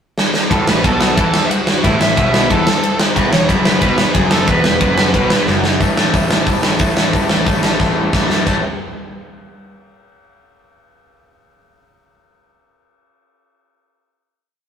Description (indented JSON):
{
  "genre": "punk rock",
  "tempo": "181 BPM",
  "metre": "4/4",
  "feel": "straight",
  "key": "A major",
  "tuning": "A4 = 440 Hz",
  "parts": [
    { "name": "big rock drum kit", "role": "drums", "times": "0.2-8.5 s", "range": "crash cymbal, hi-hat, kick drum, ride cymbal, snare drum", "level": "-15 LUFS", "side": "equal", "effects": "none" },
    { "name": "biting lead guitar", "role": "melody", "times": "0.5-5.5 s", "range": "E4 to C#6", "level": "-18 LUFS", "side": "right 2 dB", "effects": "overdrive" },
    { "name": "cranked stack guitar", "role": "riff", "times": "0.5-8.6 s", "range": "E2 to A3", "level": "-22 LUFS", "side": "left 5 dB", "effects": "overdrive" },
    { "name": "crunchy overdriven guitar", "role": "riff", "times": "0.5-5.8 s", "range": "E2 to E3", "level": "-21 LUFS", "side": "left 1 dB", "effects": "none" },
    { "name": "distorted electric guitar", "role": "riff", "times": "0.5-8.6 s", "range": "E2 to A4", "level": "-23 LUFS", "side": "right 4 dB", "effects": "distortion" },
    { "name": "fuzz picked electric bass", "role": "bass", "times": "0.5-8.6 s", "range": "E1 to F#2", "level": "-22 LUFS", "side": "equal", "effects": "overdrive" }
  ],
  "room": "moderate studio reverb, RT60 0.7 s",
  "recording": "rough rehearsal-room recording",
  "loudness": "-12 LUFS",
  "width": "side -8 dB against mid",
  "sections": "0.0-0.5 pickup bar; 0.5-5.8 riff; 5.8-8.5 outro; 8.5-9.8 final chord",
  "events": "drum fill 0.2-0.5, 5.5-5.8, 7.8-8.5",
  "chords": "0.0 N.C.; 0.5 A5; 3.2 E5; 5.8 A; 8.5 A5",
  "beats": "0.17 | 0.51 0.84 1.17 1.50 | 1.83 2.16 2.49 2.83 | 3.15 3.48 3.81 4.14 | 4.47 4.80 5.13 5.46 | 5.79 6.13 6.46 6.79 | 7.12 7.46 7.79 8.12 | 8.46"
}